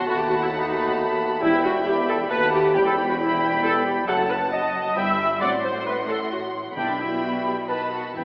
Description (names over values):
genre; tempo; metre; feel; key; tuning
quick classical-period movement for symphony orchestra; 134 BPM; 3/4; rubato; E minor; A4 = 441 Hz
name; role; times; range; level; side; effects
muted studio violin section; melody; 0.0-8.2 s; A5 to C6; -31 LUFS; equal; none
dark clarinet; second line; 0.0-8.2 s; D4 to E5; -30 LUFS; equal; none
large flute ensemble; second line; 0.0-8.2 s; G5 to C6; -30 LUFS; equal; none
muted studio violin section; second line; 0.0-8.2 s; D#5 to A5; -32 LUFS; equal; none
dark bassoon; accompaniment; 0.0-8.2 s; D#3 to A3; -30 LUFS; equal; none
muted studio viola section; accompaniment; 0.0-8.2 s; D4 to E5; -25 LUFS; equal; none
mellow French horn section; sustained chords; 0.0-8.2 s; A3 to G4; -31 LUFS; equal; none
mellow trumpet; stabs; 0.0-8.2 s; F#5 to A5; -29 LUFS; equal; none
muted studio cello section; bass; 0.0-8.2 s; D#2 to B2; -32 LUFS; equal; none
muted studio double bass section; bass; 0.0-8.2 s; E1 to D#2; -36 LUFS; equal; none
timpani; percussion; 1.4-3.4, 6.8-8.2 s; E2 to B2; -38 LUFS; equal; none
room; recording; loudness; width
wet concert hall reverb, RT60 2.1 s; AM radio sound; -20 LUFS; side -33 dB against mid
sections
0.0-8.2 A section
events
none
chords
0.1 B7/D#; 1.4 Em; 2.3 B7/D#; 2.7 Em; 4.1 D#dim/F#; 5.0 Em/G; 5.4 F#dim/A; 6.8 Em/B; 7.7 B7